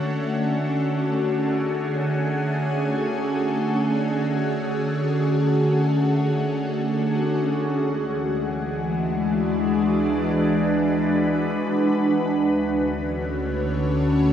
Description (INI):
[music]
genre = ambient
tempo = free time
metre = none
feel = none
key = D lydian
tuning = A4 = 444 Hz
[part]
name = ethereal airy pad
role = sustained chords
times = 0.0-14.3 s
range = D3 to B4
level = -20 LUFS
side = equal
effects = ensemble chorus, built-in reverb, phaser
[part]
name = round analog bass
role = bass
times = 7.4-14.3 s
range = D2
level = -34 LUFS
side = equal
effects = none
[sound]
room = wet scoring stage reverb, RT60 2.0 s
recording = dark, warm production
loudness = -20 LUFS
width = side -9 dB against mid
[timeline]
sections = 0.0-7.5 A section; 7.5-14.3 B section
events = fade-in on analog synth bass 7.5-14.3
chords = 0.0 Dmaj7; 7.5 E9/D; 11.9 Dmaj7